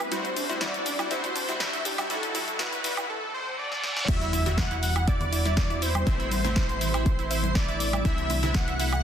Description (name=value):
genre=progressive house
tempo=121 BPM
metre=4/4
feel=straight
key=E minor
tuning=A4 = 436 Hz
part: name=wide unison lead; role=melody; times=0.0-9.0 s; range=G4 to F#5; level=-32 LUFS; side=equal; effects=dub echo
part: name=shimmering ambient pad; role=sustained chords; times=0.0-9.0 s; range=C3 to C5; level=-37 LUFS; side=equal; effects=chorus, built-in reverb, phaser, sidechain pumping
part: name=supersaw stab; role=stabs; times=0.0-9.0 s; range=A2 to F#4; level=-34 LUFS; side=left 1 dB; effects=sidechain pumping, dub echo
part: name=house drum kit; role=drums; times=0.0-9.0 s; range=crash cymbal, hi-hat, shaker, snare drum, woodblock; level=-32 LUFS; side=equal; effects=small room ambience
part: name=riser, reverse cymbal and impact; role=sound effects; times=0.1-6.1 s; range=none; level=-37 LUFS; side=equal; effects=none
part: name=analog pluck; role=arpeggios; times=0.1-8.9 s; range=D4 to E5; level=-35 LUFS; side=right 4 dB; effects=chorus, cassette tape, sidechain pumping, dub echo
part: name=airy dreamy lead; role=second line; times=4.1-9.0 s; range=C5 to F#5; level=-37 LUFS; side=equal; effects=chorus, sidechain pumping, dub echo
part: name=tight sequencer bass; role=bass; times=4.1-9.0 s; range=A1 to E2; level=-29 LUFS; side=equal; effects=sidechain pumping
part: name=electronic kick drum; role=drums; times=4.1-8.7 s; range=none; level=-26 LUFS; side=equal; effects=small room ambience
part: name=woodblock and congas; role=percussion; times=4.3-8.5 s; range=none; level=-36 LUFS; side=left 2 dB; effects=sidechain pumping on perc
room=light reverb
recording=dense, heavily limited modern master, high-pass filter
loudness=-24 LUFS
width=side -9 dB against mid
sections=0.0-4.1 A section; 4.1-9.0 B section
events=build-up 0.0-4.1; filter sweep on synth pluck 0.0-4.1; riser 0.1-3.1; reverse cymbal 3.1-4.1; drum fill 3.7-4.1; drop 4.1-9.0; impact 4.1-6.1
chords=0.1 Cadd9; 2.1 Dsus4; 4.1 Emadd9; 6.1 Am; 8.1 Cadd9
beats=| 0.12 0.61 1.11 1.60 | 2.10 2.60 3.09 3.59 | 4.08 4.58 5.08 5.57 | 6.07 6.56 7.06 7.55 | 8.05 8.55